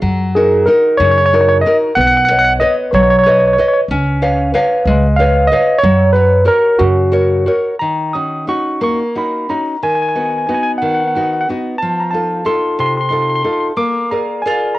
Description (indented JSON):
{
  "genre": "italian folk, Italian serenade",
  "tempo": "61 BPM (dotted quarters)",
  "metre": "6/8",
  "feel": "rubato",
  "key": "F# major, Eb minor from 7.8 s",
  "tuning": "A4 = 443 Hz",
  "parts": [
    { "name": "nylon-string guitar", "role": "accompaniment", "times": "0.0-14.8 s", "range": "C3 to E#5", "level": "-16 LUFS", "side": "equal", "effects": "cassette tape, plate reverb" },
    { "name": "upright bass", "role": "bass", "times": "0.0-7.5 s", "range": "B1 to F#2", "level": "-16 LUFS", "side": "equal", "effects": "transformer saturation" },
    { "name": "barky tine electric piano", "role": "melody", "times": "0.3-14.8 s", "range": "F#4 to Eb6", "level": "-14 LUFS", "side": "equal", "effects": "medium stereo tremolo, cassette tape, plate reverb" },
    { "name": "bowl-back mandolin", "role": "second line", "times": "14.5-14.8 s", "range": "F4", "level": "-21 LUFS", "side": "right 2 dB", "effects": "cassette tape, plate reverb" }
  ],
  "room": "moderate small room reverb, RT60 0.5 s",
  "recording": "home recording on cassette",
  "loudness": "-11 LUFS",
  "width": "side -17 dB against mid",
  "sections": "0.0-7.8 A section; 7.8-14.8 B section",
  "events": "none",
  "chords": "0.0 F#6; 2.0 Badd9; 3.9 C#7; 5.8 F#; 7.8 Ebm7; 9.8 B/D#; 11.8 F7; 13.8 Bb7"
}